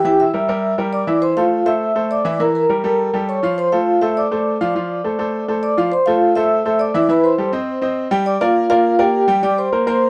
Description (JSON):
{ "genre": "latin", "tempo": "204 BPM", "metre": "4/4", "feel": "straight", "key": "D minor", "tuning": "A4 = 439 Hz", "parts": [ { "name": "vibraphone with medium mallets", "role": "melody", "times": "0.0-10.1 s", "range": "F4 to E6", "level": "-19 LUFS", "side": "equal", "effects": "none" }, { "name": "bright upright piano", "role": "accompaniment", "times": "0.0-10.1 s", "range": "E3 to G5", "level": "-22 LUFS", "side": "equal", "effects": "none" } ], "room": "light reverb", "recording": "dry, close 1970s-style studio recording", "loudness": "-17 LUFS", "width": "mono", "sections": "0.0-5.9 A section; 5.9-10.1 A section", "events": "none", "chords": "0.0 Em7b5; 1.2 Fmaj7; 2.4 Edim; 3.0 A7b9; 3.6 Dm7; 5.9 Dm9; 7.1 Am9; 7.7 Cm; 8.3 Gm7; 9.4 C5" }